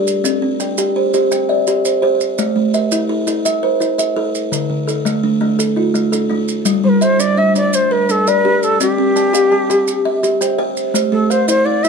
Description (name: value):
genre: southern african traditional, mbira-style interlocking cycle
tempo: 112 BPM (dotted quarters)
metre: 12/8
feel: straight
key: G equiheptatonic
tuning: A4 = 441 Hz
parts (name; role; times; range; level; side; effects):
- buzzing kalimba; arpeggios; 0.0-11.9 s; D3 to G5; -19 LUFS; right 5 dB; slapback echo
- kalimba; arpeggios; 0.0-11.9 s; D3 to A5-29c; -16 LUFS; left 2 dB; none
- maracas; percussion; 0.1-11.9 s; none; -24 LUFS; right 6 dB; none
- Native American-style cedar flute; melody; 6.8-11.9 s; G4 to E5-40c; -15 LUFS; equal; plate reverb
room: moderate small room reverb, RT60 0.6 s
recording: dark, warm production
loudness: -13 LUFS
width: side -5 dB against mid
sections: 0.0-6.7 A section; 6.7-11.9 B section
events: none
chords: 0.2 C; 2.4 Am; 4.5 Dm; 6.7 Gm; 8.8 C; 10.9 Am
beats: | 0.24 0.78 1.31 1.84 | 2.38 2.91 3.45 3.98 | 4.52 5.05 5.59 6.12 | 6.66 7.19 7.73 8.27 | 8.80 9.34 9.87 10.41 | 10.95 11.48